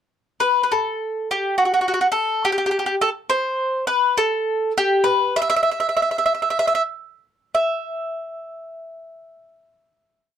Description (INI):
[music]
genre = italian folk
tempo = 90-105 BPM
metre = 3/4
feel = swing 55% on 8ths, rubato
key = E minor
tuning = A4 = 440 Hz
[part]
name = mandolin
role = solo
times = 0.4-10.4 s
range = F#4 to E5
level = -18 LUFS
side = equal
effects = none
[sound]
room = light reverb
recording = close, detailed microphones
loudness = -18 LUFS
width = side -9 dB against mid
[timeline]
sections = 0.4-7.6 A section; 7.6-10.4 final note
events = slowing down 3.9-7.6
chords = none